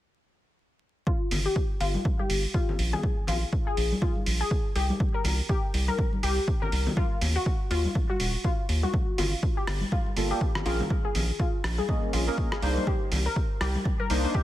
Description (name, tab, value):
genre	deep house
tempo	122 BPM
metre	4/4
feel	swing 58% on 16ths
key	unclear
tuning	A4 = 440 Hz
part	warbly dusty pluck	arpeggios	1.1-14.4 s	F4 to Bb4	-32 LUFS	left 2 dB	analog chorus, sidechain pumping, digital delay
part	electronic kick drum	drums	1.1-14.4 s	none	-28 LUFS	equal	none
part	round analog bass	bass	1.3-14.3 s	Eb1 to Eb2	-27 LUFS	equal	none
part	dusty soul sampler-style drum kit	drums	1.3-14.2 s	hi-hat, rim click	-34 LUFS	right 2 dB	none
part	congas	percussion	1.3-14.1 s	none	-35 LUFS	left 2 dB	sidechain pumping on perc
part	chorused polysynth	stabs	10.2-14.4 s	G3 to Eb5	-31 LUFS	right 1 dB	sidechain pumping, dub echo
room	little or no reverb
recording	vinyl crackle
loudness	-24 LUFS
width	side -14 dB against mid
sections	1.1-14.4 A section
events	none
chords	1.1 Fsus2/G; 2.8 Bb5; 4.8 C5; 7.0 Ebmadd9; 8.9 Gm9; 10.7 Bbm7; 12.6 Cm9